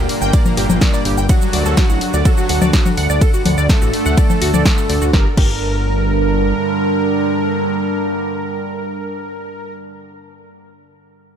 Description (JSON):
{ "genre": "melodic techno", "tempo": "125 BPM", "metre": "4/4", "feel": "straight", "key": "G harmonic minor", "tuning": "A4 = 439 Hz", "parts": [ { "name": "soft supersaw", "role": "melody", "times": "0.0-9.7 s", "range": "Bb2 to Bb4", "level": "-23 LUFS", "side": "equal", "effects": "sidechain pumping, ping-pong delay" }, { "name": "deep dark ambient pad", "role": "sustained chords", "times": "0.0-9.7 s", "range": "G3 to A5", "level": "-22 LUFS", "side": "right 3 dB", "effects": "chorus, built-in reverb, sidechain pumping" }, { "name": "tight sequenced synth", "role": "arpeggios", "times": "0.0-5.5 s", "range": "F#4 to D6", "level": "-23 LUFS", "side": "equal", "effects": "chorus, phaser, cassette tape, sidechain pumping, ping-pong delay" }, { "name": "dark detuned saw bass", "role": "bass", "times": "0.0-6.5 s", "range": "G1 to D2", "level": "-18 LUFS", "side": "equal", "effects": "sidechain pumping" }, { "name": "analog drone", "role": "drone", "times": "0.1-9.8 s", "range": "G2 to D3", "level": "-29 LUFS", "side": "left 1 dB", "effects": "chorus, sidechain pumping" }, { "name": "punchy analog drum machine", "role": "drums", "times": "0.1-5.5 s", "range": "congas, crash cymbal, hi-hat, ride cymbal, shaker, snare drum", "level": "-20 LUFS", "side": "left 2 dB", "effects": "sidechain pumping on cymbals, sidechain pumping on perc, sidechain pumping on hats" }, { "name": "electronic kick drum", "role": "drums", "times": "0.3-5.5 s", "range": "none", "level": "-14 LUFS", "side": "equal", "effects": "overdrive" } ], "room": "digital ambience", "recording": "none", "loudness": "-13 LUFS", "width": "side -8 dB against mid", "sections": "0.0-5.1 A section; 5.1-9.0 B section", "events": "drop 0.0-5.1", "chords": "0.0 Gm; 1.3 D; 5.1 Gm" }